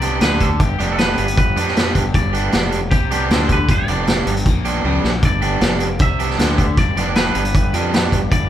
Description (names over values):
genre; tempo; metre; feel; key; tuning
indie rock; 156 BPM; 4/4; straight; G major; A4 = 441 Hz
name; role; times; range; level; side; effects
twangy electric guitar; melody; 0.0-8.5 s; G4 to E5; -24 LUFS; equal; none
overdriven electric guitar; riff; 0.0-8.5 s; F2 to F3; -25 LUFS; left 5 dB; none
overdriven semi-hollow guitar; riff; 0.0-8.2 s; G3 to G4; -22 LUFS; right 5 dB; none
fuzz fingered electric bass; bass; 0.0-8.5 s; F1 to F2; -22 LUFS; equal; overdrive
vintage drum kit; drums; 0.0-8.4 s; hi-hat, kick drum, snare drum, toms; -18 LUFS; equal; none
room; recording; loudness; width
moderate large studio reverb, RT60 1.2 s; band playing live in one room; -14 LUFS; side -11 dB against mid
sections
0.0-8.5 A section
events
drum fill 4.9-5.2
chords
0.0 G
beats
0.22 | 0.61 0.99 1.38 1.77 | 2.15 2.54 2.92 3.31 | 3.70 4.08 4.47 4.85 | 5.24 5.62 6.01 6.39 | 6.78 7.16 7.55 7.93 | 8.32